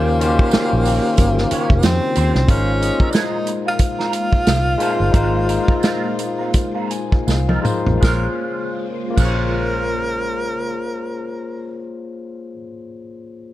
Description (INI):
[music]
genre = lush 1970s-style soul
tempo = 78-92 BPM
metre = 4/4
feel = swing 58% on 16ths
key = unclear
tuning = A4 = 440 Hz
[part]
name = breathy tenor saxophone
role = melody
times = 0.0-11.9 s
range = Bb3 to Bb4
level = -22 LUFS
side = equal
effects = none
[part]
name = barky tine electric piano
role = accompaniment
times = 0.0-13.5 s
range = Eb3 to Ab5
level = -23 LUFS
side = left 4 dB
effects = overdrive
[part]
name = soft string machine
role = sustained chords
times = 0.1-11.8 s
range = Bb2 to G4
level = -30 LUFS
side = equal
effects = phaser, ensemble chorus
[part]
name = electric guitar through a small old amp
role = riff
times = 0.0-12.7 s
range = Ab3 to Db5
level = -29 LUFS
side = right 4 dB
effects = wah, ensemble chorus
[part]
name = vintage muted fingered electric bass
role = bass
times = 0.0-12.6 s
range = F1 to F2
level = -19 LUFS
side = equal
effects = none
[part]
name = warm soul drum kit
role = drums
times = 0.2-9.4 s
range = crash cymbal, hi-hat, kick drum, snare drum, toms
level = -18 LUFS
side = equal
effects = none
[part]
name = tambourine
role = percussion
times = 0.2-9.4 s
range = none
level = -36 LUFS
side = right 14 dB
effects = none
[sound]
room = studio ambience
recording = dark, warm production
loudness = -16 LUFS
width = side -14 dB against mid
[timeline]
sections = 0.0-2.5 A section; 2.5-8.0 B section; 8.0-11.1 C section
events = slowing down 2.5-8.0; tine electric piano fill 6.5-8.0; drum fill 7.3-8.0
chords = 0.0 Eb13; 2.5 Ab69; 8.0 Bbm7